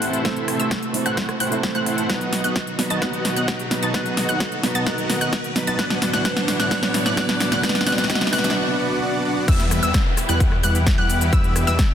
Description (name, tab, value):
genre	EDM, festival progressive house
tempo	130 BPM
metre	4/4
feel	straight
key	E minor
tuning	A4 = 440 Hz
part	felt-muted upright piano	accompaniment	0.0-9.5 s	F#3 to C5	-26 LUFS	right 4 dB	sidechain pumping, dub echo
part	muted studio string section	sustained chords	0.0-11.9 s	A2 to A4	-30 LUFS	left 2 dB	sidechain pumping
part	wide unison pluck	arpeggios	0.0-11.8 s	E6 to A6	-27 LUFS	equal	sidechain pumping, dub echo
part	dense compressed supersaw	riff	0.0-11.8 s	G3 to A5	-25 LUFS	equal	sidechain pumping, low-pass filter, dub echo
part	detuned saw bass	bass	0.0-11.8 s	A1 to A2	-28 LUFS	equal	none
part	big-room dance drum kit	drums	0.0-11.9 s	crash cymbal, hi-hat, rim click, shaker, snare drum	-24 LUFS	left 1 dB	overdrive
part	riser and downlifter	sound effects	0.0-11.9 s	none	-32 LUFS	left 1 dB	none
part	electronic kick drum	drums	0.2-11.9 s	none	-20 LUFS	equal	overdrive, high-pass filter on kick
room	moderate lush hall reverb, RT60 1.9 s, digital ambience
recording	dense, heavily limited modern master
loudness	-18 LUFS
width	side -9 dB against mid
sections	0.0-9.5 A section; 9.5-11.9 B section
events	build-up 0.0-9.5; drum fill 0.0-8.6; riser 0.0-8.6; break 8.6-9.5; drop 9.5-11.9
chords	0.0 Am; 2.1 B; 5.8 Dsus2; 9.5 Em